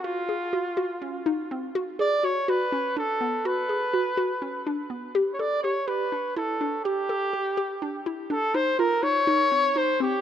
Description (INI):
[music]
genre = progressive instrumental, progressive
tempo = 247 BPM (eighths)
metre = 7/8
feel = straight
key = unclear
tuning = A4 = 440 Hz
[part]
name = warm trumpet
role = melody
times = 0.0-10.2 s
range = F4 to D5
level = -25 LUFS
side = equal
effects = tape echo
[part]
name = hollow square pluck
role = arpeggios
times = 0.0-10.2 s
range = B3 to A4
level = -28 LUFS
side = equal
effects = chorus
[sound]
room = light reverb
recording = rough home demo mix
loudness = -23 LUFS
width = side -9 dB against mid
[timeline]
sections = 0.0-10.2 A section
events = trumpet solo 0.0-10.2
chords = 0.0 Ebmadd9; 1.8 Bmadd9; 5.2 Gsus2; 8.6 Cm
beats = | 0.05 0.29 0.54 0.78 1.02 1.27 1.51 | 1.75 2.00 2.24 2.48 2.73 2.97 3.21 | 3.45 3.70 3.94 4.18 4.43 4.67 4.91 | 5.16 5.40 5.64 5.88 6.13 6.37 6.61 | 6.86 7.10 7.34 7.58 7.83 8.07 8.31 | 8.55 8.80 9.04 9.28 9.52 9.77 10.01